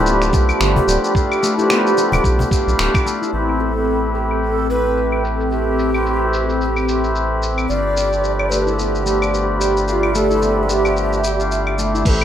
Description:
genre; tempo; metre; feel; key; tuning
organic downtempo; 110 BPM; 4/4; swing 58% on 16ths; unclear; A4 = 436 Hz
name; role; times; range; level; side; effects
hand-pumped harmonium; accompaniment; 0.0-12.2 s; F3 to D5; -22 LUFS; left 1 dB; sidechain pumping, tape echo, plate reverb
warm analog pad; sustained chords; 0.0-12.2 s; C4 to B5; -21 LUFS; equal; chorus, sidechain pumping
concert harp; arpeggios; 0.0-12.2 s; A3 to G4; -25 LUFS; left 3 dB; tape echo
round analog bass; bass; 0.0-12.2 s; D1 to B1; -22 LUFS; equal; sidechain pumping
dusty soul sampler-style drum kit; drums; 0.1-12.2 s; claves, crash cymbal, finger snaps, shaker; -24 LUFS; left 1 dB; low-pass filter on perc, low-pass filter on snare, low-pass filter on cymbals, low-pass filter on room
electronic kick drum; drums; 0.3-3.0, 12.1-12.2 s; none; -18 LUFS; equal; none
cajon; percussion; 0.3-2.5 s; none; -24 LUFS; left 2 dB; none
breathy bright low Native American-style wooden flute; melody; 3.3-12.2 s; E4 to D5; -22 LUFS; right 1 dB; ping-pong delay, plate reverb
room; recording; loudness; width
moderate small room reverb, RT60 0.6 s; rough home demo mix; -15 LUFS; side -10 dB against mid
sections
0.0-3.3 A section; 3.3-12.1 B section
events
none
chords
0.0 G7; 3.3 Am9; 7.7 G7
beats
0.06 0.60 | 1.15 1.69 2.24 2.78 | 3.33 3.87 4.42 4.96 | 5.51 6.06 6.60 7.15 | 7.69 8.24 8.78 9.33 | 9.87 10.42 10.96 11.51 | 12.06

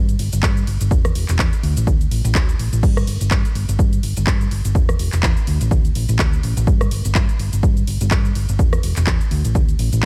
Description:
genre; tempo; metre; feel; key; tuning
filtered disco house; 125 BPM; 4/4; swing 56% on 16ths; unclear; A4 = 444 Hz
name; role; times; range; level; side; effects
hollow-body short-scale fingered electric bass; bass; 0.0-10.0 s; E1 to G2; -22 LUFS; equal; sidechain pumping
house drum kit; drums; 0.1-10.1 s; crash cymbal, handclaps, hi-hat, ride cymbal, rim click, shaker; -28 LUFS; equal; sidechain pumping on hats, sidechain pumping on perc, sidechain pumping on cymbals
electronic kick drum; drums; 0.4-10.1 s; none; -20 LUFS; equal; none
room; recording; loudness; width
digital ambience; none; -18 LUFS; mono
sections
0.0-10.1 A section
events
none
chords
none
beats
0.43 | 0.91 1.39 1.87 2.35 | 2.83 3.31 3.79 4.27 | 4.75 5.23 5.71 6.19 | 6.67 7.15 7.63 8.11 | 8.59 9.07 9.55 10.03

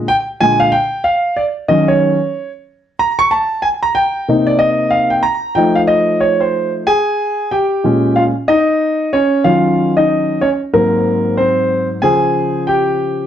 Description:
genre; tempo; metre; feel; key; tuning
hip hop; 93 BPM; 4/4; swing 62% on 16ths; Bb dorian; A4 = 440 Hz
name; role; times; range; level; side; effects
dark concert grand piano; solo; 0.0-13.3 s; Ab2 to Db6; -12 LUFS; equal; slapback echo
room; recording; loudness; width
moderate small room reverb, RT60 0.5 s; dark, warm production; -12 LUFS; side -10 dB against mid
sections
0.0-6.9 A section; 6.9-13.3 B section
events
grand piano solo 0.0-6.9, 6.9-13.3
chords
0.0 Bb7; 1.7 Ebm7; 4.3 Cm7; 5.6 F7; 6.9 Bbm7; 9.4 Ebm7; 10.7 Ab7; 12.0 Dbmaj7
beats
0.41 1.05 | 1.70 2.34 2.99 3.63 | 4.28 4.92 5.57 6.21 | 6.86 7.51 8.15 8.80 | 9.44 10.09 10.73 11.38 | 12.02 12.67

